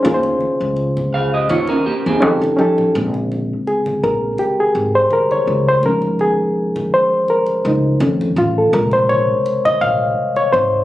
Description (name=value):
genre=R&B, neo-soul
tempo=83 BPM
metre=4/4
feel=swing 55% on 16ths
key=Bb dorian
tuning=A4 = 440 Hz
part: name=reed electric piano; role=accompaniment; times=0.0-10.8 s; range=C3 to F5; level=-15 LUFS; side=left 1 dB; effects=none
part: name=upright bass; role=bass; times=0.0-10.8 s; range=Ab1 to F3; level=-21 LUFS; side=equal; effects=none
part: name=congas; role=percussion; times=0.1-10.5 s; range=none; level=-30 LUFS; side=right 1 dB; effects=none
part: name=electric guitar through a small old amp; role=second line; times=1.1-2.4 s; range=Bb3 to F5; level=-18 LUFS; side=right 2 dB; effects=spring reverb
room=light reverb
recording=recorded on a phone in the room, studio reverb, compression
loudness=-14 LUFS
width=side -15 dB against mid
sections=0.0-2.9 A section; 2.9-10.8 B section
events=reed electric piano solo 2.9-10.8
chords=0.0 Eb9sus4; 2.2 F7b13; 2.9 Bbm7; 5.8 Eb9sus4; 8.0 F7b13; 8.7 Bbm7